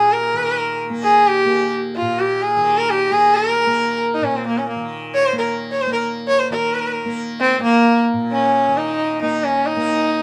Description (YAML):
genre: indian classical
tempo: 132 BPM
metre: 7/4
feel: straight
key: Bb raga bageshri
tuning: A4 = 440 Hz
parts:
  - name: clear sarangi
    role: melody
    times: 0.0-10.2 s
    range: Bb3 to Db5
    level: -18 LUFS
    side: equal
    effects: none
  - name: tanpura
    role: drone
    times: 0.0-10.2 s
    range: Bb2 to Bb3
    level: -29 LUFS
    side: equal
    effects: none
room: light reverb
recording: none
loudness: -18 LUFS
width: mono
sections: 0.0-6.5 A section; 6.5-10.2 B section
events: none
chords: none